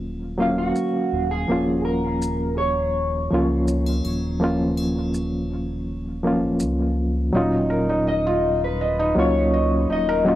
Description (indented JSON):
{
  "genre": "trip hop",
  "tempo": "82 BPM",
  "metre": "4/4",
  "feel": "straight",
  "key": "Eb minor",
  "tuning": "A4 = 440 Hz",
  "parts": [
    { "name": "reed electric piano", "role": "accompaniment", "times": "0.0-10.4 s", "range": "Bb2 to F5", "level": "-22 LUFS", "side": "equal", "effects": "tremolo, cassette tape, tape echo" },
    { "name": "round analog bass", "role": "bass", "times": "0.0-10.4 s", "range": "Eb1 to Db2", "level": "-27 LUFS", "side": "equal", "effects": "none" },
    { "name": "electric guitar at the edge of break-up", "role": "melody", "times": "0.4-10.4 s", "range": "F4 to Eb5", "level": "-25 LUFS", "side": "left 1 dB", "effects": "wide subtle chorus, tape echo" },
    { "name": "maracas and triangle", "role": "percussion", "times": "0.8-6.8 s", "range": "none", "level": "-39 LUFS", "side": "left 2 dB", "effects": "none" },
    { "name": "felt-muted upright piano", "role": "arpeggios", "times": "7.3-10.4 s", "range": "Eb4 to Eb5", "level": "-23 LUFS", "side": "right 2 dB", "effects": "cassette tape, tape echo" }
  ],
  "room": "light reverb",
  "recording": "home recording on cassette",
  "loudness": "-20 LUFS",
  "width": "side -14 dB against mid",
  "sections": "0.0-7.3 A section; 7.3-10.4 B section",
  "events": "filter sweep on reed electric piano 0.0-7.3",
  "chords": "0.0 Ebm9; 1.5 Bbm/Eb; 7.3 Ebm9"
}